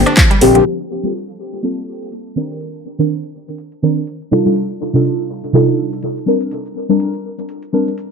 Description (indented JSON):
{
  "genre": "deep house",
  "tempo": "123 BPM",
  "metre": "4/4",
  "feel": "swing 56% on 16ths",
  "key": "G minor",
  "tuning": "A4 = 440 Hz",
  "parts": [
    { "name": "deep mellow chord stab", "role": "stabs", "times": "0.0-7.9 s", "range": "C3 to Bb4", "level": "-15 LUFS", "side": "equal", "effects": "chorus, phaser, sidechain pumping, tape echo" },
    { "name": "smooth synth bass", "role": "bass", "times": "0.0-0.6 s", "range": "Bb1", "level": "-16 LUFS", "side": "right 1 dB", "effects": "sidechain pumping" },
    { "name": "mallet-like synth pluck", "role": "arpeggios", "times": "0.1-0.6 s", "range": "F3 to D4", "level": "-21 LUFS", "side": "left 1 dB", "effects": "chorus, sidechain pumping, ping-pong delay" },
    { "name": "house drum kit", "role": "drums", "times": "0.1-8.1 s", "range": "handclaps, hi-hat, rim click, shaker", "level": "-16 LUFS", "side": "equal", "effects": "overdrive" }
  ],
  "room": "moderate plate reverb, RT60 1.3 s, digital ambience",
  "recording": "low-pass filter",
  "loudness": "-14 LUFS",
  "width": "side -5 dB against mid",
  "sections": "0.7-8.1 A section",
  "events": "filter sweep 0.7-8.1",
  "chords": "0.0 Bb69; 0.7 Gm11; 2.4 Cm9; 4.3 F13/C; 6.3 Bb69"
}